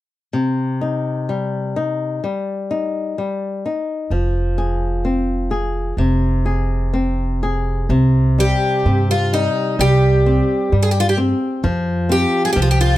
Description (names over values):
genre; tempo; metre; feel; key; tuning
fado-style ballad; 64 BPM; 2/4; rubato; C minor; A4 = 441 Hz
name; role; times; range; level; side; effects
flamenco guitar; accompaniment; 0.3-13.0 s; C3 to Ab4; -20 LUFS; left 2 dB; none
upright bass; bass; 4.1-13.0 s; F1 to G2; -18 LUFS; right 1 dB; none
picked twelve-string acoustic guitar; melody; 8.4-12.9 s; Eb4 to Ab4; -18 LUFS; equal; none
room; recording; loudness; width
light reverb; none; -16 LUFS; side -15 dB against mid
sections
0.3-7.9 A section; 7.9-13.0 B section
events
none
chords
0.3 Cm; 4.1 Fm; 7.9 C5; 11.6 F5